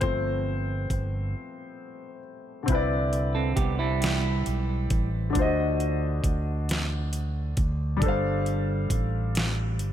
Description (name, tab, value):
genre	slow six-eight R&B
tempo	45 BPM (dotted quarters)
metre	6/8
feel	straight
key	C major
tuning	A4 = 440 Hz
part	warm concert grand piano	accompaniment	0.0-9.9 s	D3 to F5	-30 LUFS	left 3 dB	wide subtle chorus
part	fingered electric bass	bass	0.0-9.9 s	G1 to D2	-28 LUFS	equal	none
part	smooth R&B drum kit	drums	0.0-9.9 s	hi-hat, kick drum, snare drum	-28 LUFS	equal	none
part	semi-hollow electric guitar	second line	3.3-5.1 s	G3 to A4	-30 LUFS	right 6 dB	ping-pong delay
room	light reverb, digital ambience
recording	none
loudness	-24 LUFS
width	side -10 dB against mid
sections	0.0-2.7 A section; 2.7-9.9 B section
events	grand piano solo 0.0-2.7; break 1.4-2.7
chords	0.0 G9sus4; 2.7 Cmaj9; 5.4 D7b9; 8.0 G9sus4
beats	| 0.02 1.35 | 2.69 4.02 | 5.35 6.68 | 8.02 9.35